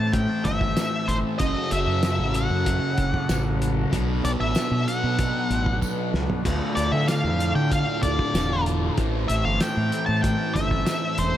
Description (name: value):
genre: psychedelic rock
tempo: 95 BPM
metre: 4/4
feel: straight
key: unclear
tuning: A4 = 436 Hz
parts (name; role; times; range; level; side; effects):
- octave-fuzz lead guitar; melody; 0.0-11.4 s; C5 to A5; -27 LUFS; left 1 dB; distortion, dub echo
- overdriven combo organ; sustained chords; 0.0-11.4 s; B3 to A4; -36 LUFS; right 6 dB; none
- fuzz guitar; riff; 0.0-11.4 s; D2 to B3; -26 LUFS; left 1 dB; distortion, phaser, dub echo
- growling fingered electric bass; bass; 0.0-11.3 s; E1 to D3; -25 LUFS; equal; overdrive
- cloth-damped thuddy drum kit; drums; 0.1-11.3 s; crash cymbal, hi-hat, kick drum, snare drum, toms; -28 LUFS; equal; none
- tambourine; percussion; 0.8-11.0 s; none; -43 LUFS; right 12 dB; dub echo
room: small room ambience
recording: echo-heavy mix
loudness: -21 LUFS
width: side -12 dB against mid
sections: 0.0-11.4 A section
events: drum fill 5.8-6.5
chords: 0.0 Am; 1.4 F#m; 3.9 Bm7; 6.5 Dm; 9.0 Am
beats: 0.13 0.77 | 1.40 2.03 2.66 3.29 | 3.93 4.56 5.19 5.82 | 6.45 7.08 7.72 8.35 | 8.98 9.61 10.24 10.87